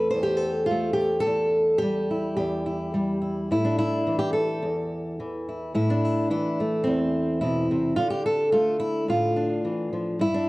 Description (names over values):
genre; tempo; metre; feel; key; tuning
folk, solo fingerstyle acoustic guitar; 108 BPM; 4/4; straight; A minor; A4 = 439 Hz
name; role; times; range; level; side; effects
fingerpicked steel-string acoustic guitar; solo; 0.0-10.5 s; E2 to C5; -22 LUFS; equal; none
room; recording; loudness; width
moderate recital hall reverb, RT60 1.6 s; worn, warbling old tape, cassette tape, warbly pitch drift; -22 LUFS; side -21 dB against mid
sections
0.0-3.5 A section; 3.5-10.5 B section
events
none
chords
0.0 Am/E; 1.3 Em; 3.5 Am; 8.0 Dm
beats
0.14 0.70 | 1.26 1.82 2.38 2.94 | 3.51 4.07 4.63 5.19 | 5.75 6.31 6.87 7.42 | 7.98 8.54 9.09 9.65 | 10.21